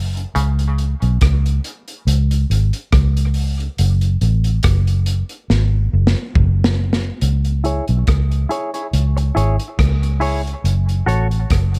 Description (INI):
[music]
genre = dub reggae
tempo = 70 BPM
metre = 4/4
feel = swing 56% on 16ths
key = C# minor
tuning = A4 = 440 Hz
[part]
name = vintage muted fingered electric bass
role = bass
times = 0.0-11.8 s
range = F#1 to C#2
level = -18 LUFS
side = equal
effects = none
[part]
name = crunchy breakbeat drum kit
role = drums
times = 0.2-11.8 s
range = hi-hat, kick drum, rim click, snare drum, toms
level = -23 LUFS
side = equal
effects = none
[part]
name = muted clav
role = riff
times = 0.3-0.6 s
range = C#3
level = -31 LUFS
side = equal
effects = dub echo
[part]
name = semi-hollow electric guitar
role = accompaniment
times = 7.6-11.3 s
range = E4 to C#5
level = -26 LUFS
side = equal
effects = low-pass filter, dub echo
[sound]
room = small room ambience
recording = none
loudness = -17 LUFS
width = mono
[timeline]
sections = 0.0-7.2 A section; 7.2-11.8 B section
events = break 0.0-7.2; drum fill 5.5-7.2; filter sweep on clean electric guitar 7.2-11.8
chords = 0.4 C#5; 3.8 N.C.; 7.2 C#m; 10.6 F#m